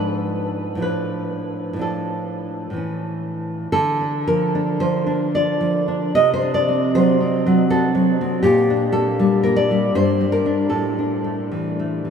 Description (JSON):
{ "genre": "romantic piece for solo classical guitar", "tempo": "58-82 BPM", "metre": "3/4", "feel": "rubato", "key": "D minor", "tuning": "A4 = 440 Hz", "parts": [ { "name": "nylon-string guitar", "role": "solo", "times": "0.0-12.1 s", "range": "G2 to Eb5", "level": "-17 LUFS", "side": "equal", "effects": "none" } ], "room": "wet huge ambient reverb, RT60 8.4 s", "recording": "in a vast, echoing space", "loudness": "-17 LUFS", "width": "side -7 dB against mid", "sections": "0.0-3.7 A section; 3.7-12.1 B section", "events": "none", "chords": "0.0 G#dim7; 0.8 Dm/A; 2.8 A; 3.7 Dm; 6.1 D7/C; 8.4 Gm/Bb; 9.9 Gm; 10.7 Asus4" }